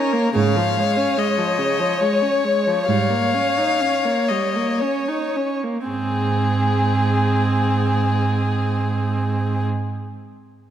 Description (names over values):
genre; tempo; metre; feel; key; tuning
classical, slow romantic movement for string quartet; 53-74 BPM; 3/4; rubato; Ab major; A4 = 440 Hz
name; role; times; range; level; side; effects
rich violin; melody; 0.0-9.6 s; Ab4 to F5; -24 LUFS; left 7 dB; none
rich violin; second line; 0.0-9.7 s; Ab4 to Db5; -24 LUFS; left 2 dB; none
rich viola; accompaniment; 0.0-9.7 s; Db3 to Eb4; -23 LUFS; right 2 dB; none
rich cello; bass; 0.4-9.7 s; Ab2; -21 LUFS; right 4 dB; none
room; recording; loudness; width
wet concert hall reverb, RT60 2.1 s; none; -18 LUFS; side -10 dB against mid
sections
0.0-5.9 A section; 5.9-8.9 B section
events
slowing down 0.0-5.9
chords
0.3 Db/Ab; 2.9 Eb7/Ab; 5.9 Ab